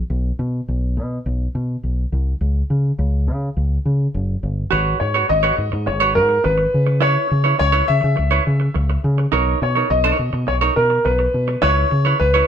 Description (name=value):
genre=disco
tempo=104 BPM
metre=4/4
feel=straight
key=C# dorian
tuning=A4 = 443 Hz
part: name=fingered electric bass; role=bass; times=0.1-12.4 s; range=F#1 to C#3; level=-18 LUFS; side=equal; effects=none
part: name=semi-hollow electric guitar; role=accompaniment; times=4.7-12.5 s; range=D#4 to C#5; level=-20 LUFS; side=right 6 dB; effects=none
part: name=warm grand piano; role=melody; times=5.0-12.5 s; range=A#4 to E5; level=-19 LUFS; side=left 1 dB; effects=none
room=moderate studio reverb, RT60 0.6 s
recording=band playing live in one room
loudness=-16 LUFS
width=side -8 dB against mid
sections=0.0-4.7 A section; 4.7-12.5 B section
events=none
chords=0.1 N.C.; 4.7 G#m7; 6.7 C#m7; 9.3 Bmaj9; 11.6 C#m7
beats=| 0.10 0.67 1.25 1.83 | 2.41 2.98 3.56 4.14 | 4.71 5.29 5.87 6.44 | 7.02 7.60 8.17 8.75 | 9.32 9.90 10.48 11.05 | 11.63 12.20